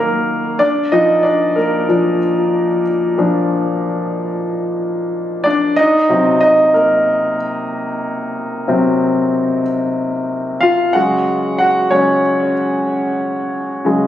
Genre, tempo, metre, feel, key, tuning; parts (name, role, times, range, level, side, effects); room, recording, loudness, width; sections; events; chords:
pop; 93 BPM; 4/4; straight; A4 = 439 Hz
clear concert grand piano; solo; 0.0-14.1 s; Bb2 to Gb5; -13 LUFS; equal; tape echo
moderate recital hall reverb, RT60 1.7 s; recorded on a phone in the room, studio reverb; -13 LUFS; side -12 dB against mid
0.0-14.1 A section
grand piano solo 0.0-14.1
0.0 Ebm; 0.6 Bb; 5.8 Cm7b5; 11.0 Dbsus4